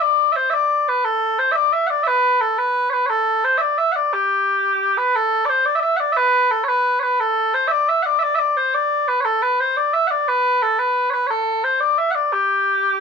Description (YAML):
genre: celtic folk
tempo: 117 BPM (dotted quarters)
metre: 6/8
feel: straight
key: unclear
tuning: A4 = 442 Hz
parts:
  - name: mellow small bagpipes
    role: solo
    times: 0.0-13.0 s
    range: G4 to F#5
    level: -16 LUFS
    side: left 1 dB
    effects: none
room: moderate studio reverb, RT60 0.6 s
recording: none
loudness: -16 LUFS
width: side -6 dB against mid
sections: 0.0-5.2 A section; 5.2-13.0 A section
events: none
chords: none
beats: | 0.02 0.53 | 1.04 1.56 | 2.07 2.58 | 3.10 3.61 | 4.12 4.64 | 5.15 5.66 | 6.18 6.69 | 7.20 7.71 | 8.23 8.74 | 9.25 9.77 | 10.28 10.79 | 11.30 11.82 | 12.33 12.84